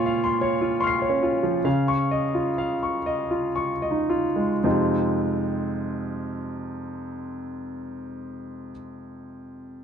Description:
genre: neoclassical minimalist piano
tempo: 55-83 BPM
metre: 3/4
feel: rubato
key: F minor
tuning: A4 = 437 Hz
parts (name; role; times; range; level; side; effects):
- bright grand piano; solo; 0.0-9.8 s; F2 to C7; -23 LUFS; equal; none
room: small room ambience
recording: dry, close 1970s-style studio recording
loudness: -22 LUFS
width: side -7 dB against mid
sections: 0.0-4.6 A section; 4.6-9.8 B section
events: slowing down 0.0-4.6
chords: 0.0 Bbmadd9; 1.6 Dbadd9; 4.6 Fm7

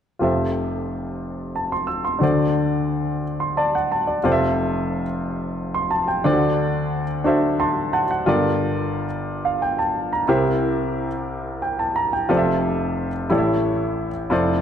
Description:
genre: gospel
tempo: 60 BPM (dotted quarters)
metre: 6/8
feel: straight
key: F major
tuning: A4 = 445 Hz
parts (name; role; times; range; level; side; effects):
- warm grand piano; solo; 0.2-14.6 s; F1 to E6; -19 LUFS; equal; none
room: moderate concert hall reverb, RT60 1.7 s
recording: none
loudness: -19 LUFS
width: side -8 dB against mid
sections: 0.2-4.2 A section; 4.2-14.6 B section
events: grand piano fill 3.2-4.2, 7.3-8.3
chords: 0.2 Fmaj9; 2.2 D7; 4.2 Fmaj9; 6.2 D7; 8.3 Gm9; 10.3 C7; 12.3 Fmaj9; 13.3 A7

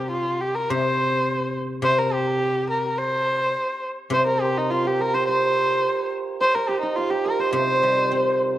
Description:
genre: chinese traditional, Chinese chamber ensemble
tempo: 105 BPM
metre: 2/4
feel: rubato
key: C yu mode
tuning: A4 = 440 Hz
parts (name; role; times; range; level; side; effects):
- dark erhu; melody; 0.0-8.4 s; Eb4 to C5; -22 LUFS; equal; tape echo
- guzheng; accompaniment; 0.0-8.6 s; C3 to C4; -26 LUFS; left 2 dB; none
- hammered dulcimer; second line; 4.1-8.6 s; Eb4 to Eb5; -25 LUFS; right 6 dB; none
room: moderate spring reverb, RT60 1.3 s, small room reverb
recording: dark, warm production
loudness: -20 LUFS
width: side -13 dB against mid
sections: 0.0-4.1 A section; 4.1-8.6 B section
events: none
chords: none

